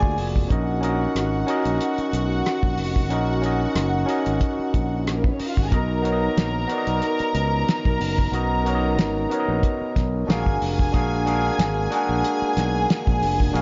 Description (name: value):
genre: lush 1970s-style soul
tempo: 92 BPM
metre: 4/4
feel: swing 54% on 16ths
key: Eb minor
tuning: A4 = 442 Hz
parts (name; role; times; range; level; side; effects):
- dark studio string section; second line; 0.0-13.6 s; Bb3 to A#5; -30 LUFS; equal; none
- overdriven tine electric piano; accompaniment; 0.0-13.6 s; Bb3 to Gb5; -27 LUFS; equal; none
- overdriven fingered electric bass; bass; 0.0-13.6 s; F1 to D2; -28 LUFS; equal; none
- cloth-damped thuddy drum kit; drums; 0.0-13.6 s; hi-hat, kick drum, rim click, snare drum; -26 LUFS; equal; none
- dark French horn section; sustained chords; 5.7-13.6 s; Ab3 to A#4; -35 LUFS; equal; none
room: light reverb, studio ambience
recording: dark, warm production, nothing above 7.5 kHz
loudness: -22 LUFS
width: mono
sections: 0.0-13.6 A section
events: none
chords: 0.5 Ebm7; 5.7 Bmaj7; 10.3 Bb7b13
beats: | 0.50 1.15 1.80 2.46 | 3.11 3.76 4.41 5.07 | 5.72 6.37 7.02 7.67 | 8.33 8.98 9.63 10.29 | 10.94 11.59 12.24 12.90 | 13.55